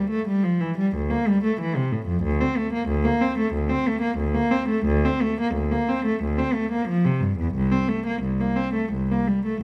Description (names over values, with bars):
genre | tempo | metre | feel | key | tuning
classical, baroque-style suite movement for unaccompanied cello | 90 BPM | 4/4 | rubato | unclear | A4 = 440 Hz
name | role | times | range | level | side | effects
warm cello | solo | 0.0-9.6 s | C2 to C4 | -23 LUFS | equal | none
room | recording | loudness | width
moderate recital hall reverb, RT60 1.4 s | close, detailed microphones | -23 LUFS | mono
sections
0.0-9.6 A section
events
none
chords
none